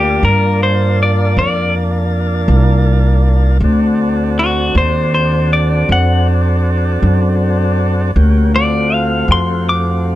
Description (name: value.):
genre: slow blues.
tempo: 53 BPM (dotted quarters).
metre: 12/8.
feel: straight.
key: unclear.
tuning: A4 = 440 Hz.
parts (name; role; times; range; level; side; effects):
clean electric guitar; melody; 0.0-10.2 s; F#4 to D6; -15 LUFS; left 1 dB; none.
tonewheel organ; sustained chords; 0.0-10.2 s; A3 to A5; -20 LUFS; equal; slow rotary speaker.
upright bass; bass; 0.0-10.2 s; C2 to G2; -13 LUFS; equal; none.
room: little or no reverb.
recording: dark, warm production.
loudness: -11 LUFS.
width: side -14 dB against mid.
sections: 0.0-10.2 A section.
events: none.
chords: 0.0 Gm9; 3.6 D7#9.